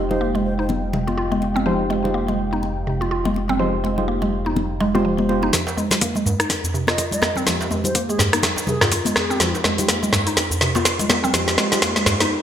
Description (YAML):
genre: afro house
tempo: 124 BPM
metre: 4/4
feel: swing 58% on 16ths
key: F minor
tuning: A4 = 438 Hz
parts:
  - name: dark analog pad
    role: sustained chords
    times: 0.0-12.3 s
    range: Ab3 to G5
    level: -32 LUFS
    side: right 2 dB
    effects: chorus, sidechain pumping
  - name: mallet-like synth pluck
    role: arpeggios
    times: 0.0-12.3 s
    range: C3 to F4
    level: -24 LUFS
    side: equal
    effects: chorus, sidechain pumping, ping-pong delay
  - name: deep mellow chord stab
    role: stabs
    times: 0.0-12.3 s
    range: Ab3 to C5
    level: -26 LUFS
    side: right 1 dB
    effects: lush chorus, sidechain pumping, ping-pong delay
  - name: dark detuned saw bass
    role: bass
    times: 0.0-5.5 s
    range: F1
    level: -27 LUFS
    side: equal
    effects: sidechain pumping
  - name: bansuri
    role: melody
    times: 0.1-0.7, 6.9-9.5 s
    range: Ab4 to Eb5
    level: -28 LUFS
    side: equal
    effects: ping-pong delay
  - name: congas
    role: percussion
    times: 0.1-12.3 s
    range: none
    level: -28 LUFS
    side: left 4 dB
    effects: none
  - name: afro-pop drum kit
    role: drums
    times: 5.5-12.3 s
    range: hi-hat, rim click, shaker, snare drum, toms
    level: -19 LUFS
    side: equal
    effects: studio reverb, gated reverb
  - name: electronic kick drum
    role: drums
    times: 5.5-12.0 s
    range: none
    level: -27 LUFS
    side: equal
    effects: overdrive, high-pass filter on kick, studio reverb
  - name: djembe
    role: percussion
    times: 5.5-12.2 s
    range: none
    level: -27 LUFS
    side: right 2 dB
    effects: none
room: wet plate reverb, RT60 1.4 s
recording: bright 1980s-style digital production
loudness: -17 LUFS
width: side -9 dB against mid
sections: 0.0-5.5 A section; 5.5-12.4 B section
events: build-up 5.5-12.4; drum fill 5.5-12.3; filter sweep on synth pluck 5.5-12.4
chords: 0.0 Fm7